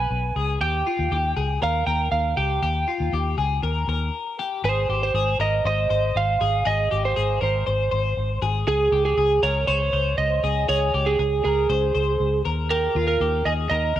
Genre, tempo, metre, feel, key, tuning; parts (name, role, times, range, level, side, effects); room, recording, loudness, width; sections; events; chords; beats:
jangly indie pop; 119 BPM; 4/4; straight; Ab major; A4 = 439 Hz
lightly driven lead guitar; melody; 0.0-14.0 s; Ab4 to Ab5; -23 LUFS; right 4 dB; cassette tape
twelve-string electric guitar; arpeggios; 0.0-14.0 s; F4 to C5; -27 LUFS; left 8 dB; wide subtle chorus
vintage muted fingered electric bass; bass; 0.0-14.0 s; Ab1 to Eb2; -25 LUFS; left 1 dB
light reverb; home recording on cassette; -20 LUFS; side -12 dB against mid
0.0-4.6 A section; 4.6-14.0 B section
break 4.1-4.6
0.0 N.C.; 0.6 Eb; 4.6 Ab; 8.7 Db5; 12.5 Eb
0.11 | 0.61 1.12 1.62 2.12 | 2.63 3.13 3.64 4.14 | 4.65 5.15 5.65 6.16 | 6.66 7.17 7.67 8.17 | 8.68 9.18 9.68 10.19 | 10.69 11.19 11.70 12.20 | 12.70 13.21 13.71